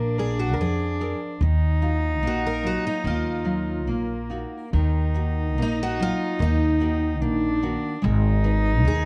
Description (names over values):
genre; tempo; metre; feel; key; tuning
fado-style ballad; 73 BPM; 2/4; rubato; Eb harmonic minor; A4 = 441 Hz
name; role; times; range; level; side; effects
picked twelve-string acoustic guitar; melody; 0.0-9.0 s; Eb4 to Bb4; -30 LUFS; equal; none
rich cello; second line; 0.0-9.1 s; Bb3 to Eb4; -32 LUFS; equal; none
nylon-string guitar; accompaniment; 0.0-9.1 s; Eb3 to D5; -31 LUFS; equal; none
upright bass; bass; 0.0-9.1 s; Ab1 to F2; -26 LUFS; equal; none
room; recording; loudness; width
little or no reverb; dark, warm production; -24 LUFS; mono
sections
0.0-4.7 A section; 4.7-9.1 A section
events
none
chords
0.0 Bb7; 1.4 Ebmadd9; 4.7 Ebm; 8.0 Abm